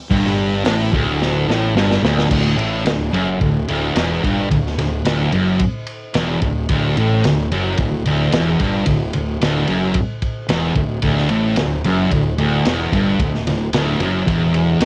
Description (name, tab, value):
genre	garage rock duo or trio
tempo	110 BPM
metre	4/4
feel	straight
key	D major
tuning	A4 = 440 Hz
part	thick fuzz guitar	riff	0.1-14.8 s	D2 to A2	-20 LUFS	equal	distortion
part	fuzz fingered electric bass	bass	0.1-14.8 s	D1 to A1	-26 LUFS	equal	overdrive
part	crunchy breakbeat drum kit	drums	0.1-14.8 s	crash cymbal, hi-hat, kick drum, ride cymbal, snare drum	-24 LUFS	equal	cassette tape
room	light reverb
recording	home recording on cassette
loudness	-18 LUFS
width	mono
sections	0.0-2.3 A section; 2.3-14.8 B section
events	drum fill 1.2-2.3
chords	0.0 D5; 2.3 D